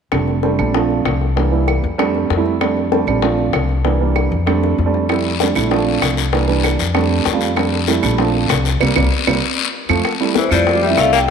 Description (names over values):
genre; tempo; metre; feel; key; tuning
Afro-Cuban jazz; 194 BPM; 4/4; straight; F major; A4 = 440 Hz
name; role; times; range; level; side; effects
dark upright piano; accompaniment; 0.1-11.3 s; E3 to G4; -18 LUFS; right 6 dB; none
upright bass; bass; 0.1-11.3 s; F1 to F2; -19 LUFS; left 2 dB; none
bongos; percussion; 0.1-11.3 s; none; -23 LUFS; left 12 dB; none
claves; percussion; 0.1-11.1 s; none; -27 LUFS; right 7 dB; none
guiro; percussion; 5.1-11.3 s; none; -23 LUFS; left 11 dB; none
congas; percussion; 10.0-11.3 s; none; -27 LUFS; left 10 dB; none
vibraphone with medium hard mallets; melody; 10.4-11.2 s; C5 to G5; -16 LUFS; left 2 dB; none
edgy tenor saxophone; second line; 10.4-11.2 s; E3 to Bb3; -17 LUFS; left 9 dB; none
room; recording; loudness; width
wet echo chamber reverb, RT60 2.2 s; 1960s-style stereo with parts hard left and right; -14 LUFS; side -6 dB against mid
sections
0.1-10.0 A section; 10.0-11.3 B section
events
drum fill 4.6-5.1; band accent 8.8-10.0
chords
0.1 F6; 0.7 Bbmaj7; 1.4 C7; 2.0 F6; 3.2 Bbmaj7; 3.8 C7; 4.5 F6; 5.7 Bbmaj7; 6.3 C7; 7.0 F6; 8.2 Bbmaj7; 8.8 C5; 9.4 F; 10.0 Fmaj9